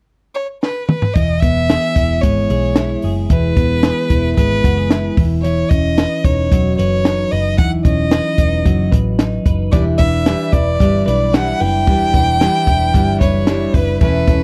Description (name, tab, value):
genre	jangly indie pop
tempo	112 BPM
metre	4/4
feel	straight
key	unclear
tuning	A4 = 439 Hz
part	rich violin	melody	0.3-14.4 s	B4 to G5	-22 LUFS	equal	none
part	compact cocktail drum kit	drums	0.6-14.4 s	hi-hat, kick drum, snare drum, toms	-18 LUFS	equal	none
part	twelve-string electric guitar	arpeggios	1.2-14.4 s	E3 to B4	-22 LUFS	equal	none
part	vintage muted picked electric bass	bass	1.2-14.4 s	E1 to B1	-21 LUFS	equal	none
part	picked steel-string acoustic guitar	accompaniment	9.7-14.4 s	E3 to B4	-23 LUFS	equal	none
room	light reverb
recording	dry, close 1970s-style studio recording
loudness	-15 LUFS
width	mono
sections	0.0-1.2 A section; 1.2-14.4 B section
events	drum fill 0.6-1.2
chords	0.0 N.C.; 1.2 E; 5.2 Badd9/E; 9.7 G/E